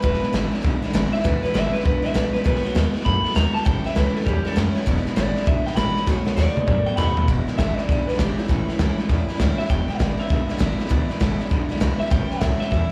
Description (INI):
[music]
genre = rockabilly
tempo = 199 BPM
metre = 4/4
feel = swing 64% on 8ths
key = E mixolydian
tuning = A4 = 440 Hz
[part]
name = electric guitar through a small old amp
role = melody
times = 0.0-12.9 s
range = E4 to B5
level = -29 LUFS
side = equal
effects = slapback echo, analog delay
[part]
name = picked steel-string acoustic guitar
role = accompaniment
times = 0.0-12.9 s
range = E2 to F#4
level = -32 LUFS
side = equal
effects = slapback echo
[part]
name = electric guitar through a small old amp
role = riff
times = 0.0-12.9 s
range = E2 to A3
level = -33 LUFS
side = equal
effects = slapback echo
[part]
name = upright bass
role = bass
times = 0.0-12.8 s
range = E1 to G#2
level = -26 LUFS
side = equal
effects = none
[part]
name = raw garage drum kit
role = drums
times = 0.0-12.8 s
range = hi-hat, kick drum, snare drum, toms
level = -25 LUFS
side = equal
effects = none
[sound]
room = small room reverb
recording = live gig heard through the venue's PA, club reverb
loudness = -21 LUFS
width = mono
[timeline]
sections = 0.0-7.3 A section; 7.3-12.9 B section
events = clean electric guitar solo 0.0-7.3; drum fill 6.1-7.3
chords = 0.0 E7; 2.5 B7; 3.7 A7; 4.9 E7; 6.1 B7; 7.3 E7; 8.5 A7; 9.7 E7; 12.1 A7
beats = | 0.04 0.34 0.64 0.94 | 1.25 1.55 1.85 2.15 | 2.45 2.76 3.06 3.36 | 3.66 3.96 4.27 4.57 | 4.87 5.17 5.47 5.77 | 6.08 6.38 6.68 6.98 | 7.28 7.58 7.88 8.19 | 8.49 8.79 9.09 9.39 | 9.69 10.00 10.30 10.60 | 10.90 11.20 11.51 11.81 | 12.11 12.41 12.71